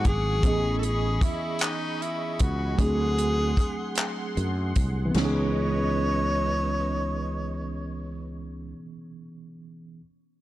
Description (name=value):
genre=slow six-eight R&B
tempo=51 BPM (dotted quarters)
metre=6/8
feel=straight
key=C# minor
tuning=A4 = 440 Hz
part: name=breathy tenor saxophone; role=melody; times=0.0-8.3 s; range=D#4 to C#5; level=-30 LUFS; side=equal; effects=ping-pong delay
part: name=mellow tine electric piano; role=accompaniment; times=0.0-10.0 s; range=E3 to D#5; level=-31 LUFS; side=right 2 dB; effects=medium stereo tremolo
part: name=warm analog pad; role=sustained chords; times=0.0-8.3 s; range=G#4 to D6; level=-36 LUFS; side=right 1 dB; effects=chorus
part: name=sustaining fretless electric bass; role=bass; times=0.0-8.7 s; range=G#1 to F#2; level=-28 LUFS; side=equal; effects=none
part: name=warm soul drum kit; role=drums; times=0.0-5.3 s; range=crash cymbal, handclaps, hi-hat, kick drum, snare drum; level=-26 LUFS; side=equal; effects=none
room=small room ambience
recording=dark, warm production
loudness=-24 LUFS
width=side -15 dB against mid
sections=0.0-5.1 A section; 5.1-7.5 B section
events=none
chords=0.4 Amaj9#11; 2.8 D7#11; 5.1 C#m9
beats=| 0.44 1.61 | 2.79 3.97 | 5.14 6.32